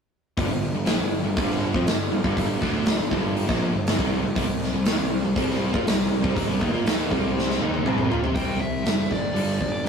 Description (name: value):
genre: hard rock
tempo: 120 BPM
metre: 4/4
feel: straight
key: unclear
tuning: A4 = 440 Hz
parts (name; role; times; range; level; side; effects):
- heavy high-gain guitar; riff; 0.4-9.9 s; G2 to G4; -31 LUFS; left 4 dB; distortion
- overdriven semi-hollow guitar; riff; 0.4-9.9 s; G2 to G4; -27 LUFS; right 4 dB; none
- fuzz picked electric bass; bass; 0.4-9.9 s; F#1 to C3; -28 LUFS; left 1 dB; overdrive
- big rock drum kit; drums; 0.4-9.9 s; hi-hat, kick drum, snare drum, toms; -24 LUFS; equal; none
- high-gain lead guitar; melody; 8.3-9.9 s; D5 to G5; -30 LUFS; left 1 dB; distortion
room: light reverb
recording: rough rehearsal-room recording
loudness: -21 LUFS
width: side -6 dB against mid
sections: 0.4-8.3 A section; 8.3-9.9 B section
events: drum fill 7.3-8.3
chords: 0.4 G5; 4.4 C5; 8.3 C; 9.4 G5